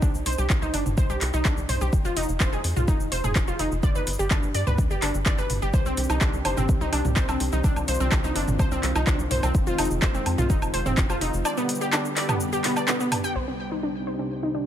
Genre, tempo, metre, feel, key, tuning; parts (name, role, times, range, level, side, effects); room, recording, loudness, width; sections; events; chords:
melodic techno; 126 BPM; 4/4; straight; C harmonic minor; A4 = 440 Hz
wide unison pluck; arpeggios; 0.0-14.6 s; B3 to G5; -27 LUFS; equal; sidechain pumping, tape echo
tight sequencer bass; bass; 0.0-14.7 s; F1 to G2; -28 LUFS; equal; sidechain pumping
deep house drum kit; drums; 0.0-13.3 s; handclaps, hi-hat, shaker, toms, woodblock; -28 LUFS; equal; overdrive, low-pass filter on hats, low-pass filter on perc, low-pass filter on snare, low-pass filter on toms, low-pass filter on room
electronic kick drum; drums; 0.0-11.1 s; -23 LUFS; equal; overdrive
warm analog pad; sustained chords; 5.7-14.7 s; D3 to G4; -32 LUFS; equal; chorus, vintage 12-bit sampler grit, sidechain pumping
analog drone; drone; 13.6-14.7 s; C3 to G3; -36 LUFS; left 1 dB; chorus, sidechain pumping
light reverb; -22 LUFS; side -10 dB against mid
0.0-13.4 A section; 13.4-14.7 B section
filter sweep on synth pluck 13.4-14.7; filter sweep on analog synth pad 13.4-14.7
0.0 Csus2; 1.9 Fm7; 3.8 G; 5.7 Cmadd9; 9.5 Fm7; 11.5 G; 13.4 Cmadd9